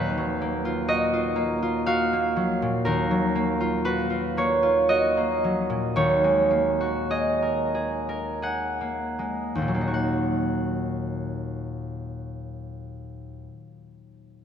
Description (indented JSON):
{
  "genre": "classical, solo harp piece",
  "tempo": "38-64 BPM",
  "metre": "3/4",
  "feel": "rubato",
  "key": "Eb minor",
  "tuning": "A4 = 439 Hz",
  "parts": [
    { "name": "concert harp", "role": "solo", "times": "0.0-13.5 s", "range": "Eb2 to Gb5", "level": "-23 LUFS", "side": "equal", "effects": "none" }
  ],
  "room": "wet church reverb, RT60 3.8 s",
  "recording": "none",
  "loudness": "-22 LUFS",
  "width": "side -8 dB against mid",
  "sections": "0.0-9.9 A section; 9.9-14.1 B section",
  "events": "slowing down 1.4-9.9",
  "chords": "0.0 Ebmadd9; 6.0 Gb69/Eb; 9.9 Ebm"
}